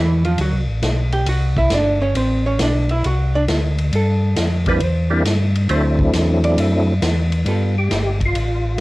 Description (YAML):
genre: soul jazz organ trio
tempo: 136 BPM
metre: 4/4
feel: swing 68% on 8ths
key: G major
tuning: A4 = 440 Hz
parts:
  - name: archtop guitar, miked and amplified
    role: accompaniment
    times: 0.0-7.7 s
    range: E3 to G5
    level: -21 LUFS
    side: right 2 dB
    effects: none
  - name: mellow tonewheel organ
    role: bass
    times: 0.0-8.8 s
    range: G1 to G2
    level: -18 LUFS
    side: equal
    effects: chorus vibrato, slow rotary speaker
  - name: swinging big-band drum kit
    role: drums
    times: 0.2-8.8 s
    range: hi-hat, kick drum, ride cymbal, snare drum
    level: -23 LUFS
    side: equal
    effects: cassette tape
  - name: percussive tonewheel organ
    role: melody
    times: 4.7-8.8 s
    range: F#3 to G4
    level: -20 LUFS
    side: equal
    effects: slow rotary speaker, chorus vibrato, cassette tape
room: light reverb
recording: home recording on cassette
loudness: -15 LUFS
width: side -20 dB against mid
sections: 0.0-7.5 A section; 7.5-8.8 A section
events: hollow-body jazz guitar solo 0.0-7.5; tonewheel organ solo 7.5-8.8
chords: 0.4 D9; 3.9 Gsus2; 4.8 C9; 5.7 D9; 7.5 G9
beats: | 0.39 0.83 1.27 1.72 | 2.16 2.60 3.04 3.48 | 3.93 4.37 4.81 5.25 | 5.70 6.14 6.58 7.02 | 7.46 7.91 8.35 8.79